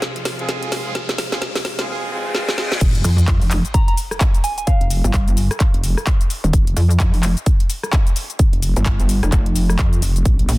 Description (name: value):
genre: bass house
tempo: 129 BPM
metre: 4/4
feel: swing 60% on 16ths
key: F minor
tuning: A4 = 439 Hz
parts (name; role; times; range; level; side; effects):
- clear studio string section; sustained chords; 0.0-1.8 s; C3 to F4; -34 LUFS; left 1 dB; sidechain pumping
- garage drum kit; drums; 0.0-10.6 s; crash cymbal, handclaps, hi-hat, ride cymbal, rim click, shaker, snare drum; -24 LUFS; equal; soft clipping on snare
- riser, reverse cymbal and sub drop; sound effects; 0.0-4.7 s; none; -28 LUFS; left 1 dB; none
- vowel-sweep wobble bass; bass; 0.3-10.5 s; F1 to F2; -21 LUFS; equal; chorus, tube saturation, sidechain pumping, high-pass filter
- bright horn section; stabs; 0.4-2.8 s; Ab3 to Ab4; -28 LUFS; right 2 dB; sidechain pumping, low-pass filter, tape echo
- electronic kick drum; drums; 2.8-10.4 s; none; -16 LUFS; equal; none
- pulsing pluck wobble bass; bass; 3.0-10.6 s; Eb1 to F2; -16 LUFS; equal; chorus, overdrive, sidechain pumping
- soft synth bell; melody; 3.7-5.1 s; F5 to Bb5; -26 LUFS; right 2 dB; chorus, tape echo
room: little or no reverb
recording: dense, heavily limited modern master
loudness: -15 LUFS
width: side -20 dB against mid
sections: 0.0-2.8 A section; 2.8-10.6 B section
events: build-up 0.0-2.8; drum fill 0.0-1.9, 2.3-2.8; riser 0.0-2.8; reverse cymbal 1.9-2.8; drop 2.8-10.6; impact 2.8-4.7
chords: 0.0 Fm; 2.8 N.C.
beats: 0.02 0.49 | 0.95 1.42 1.88 2.35 | 2.81 3.28 3.74 4.21 | 4.67 5.14 5.60 6.07 | 6.53 7.00 7.46 7.93 | 8.39 8.86 9.32 9.79 | 10.25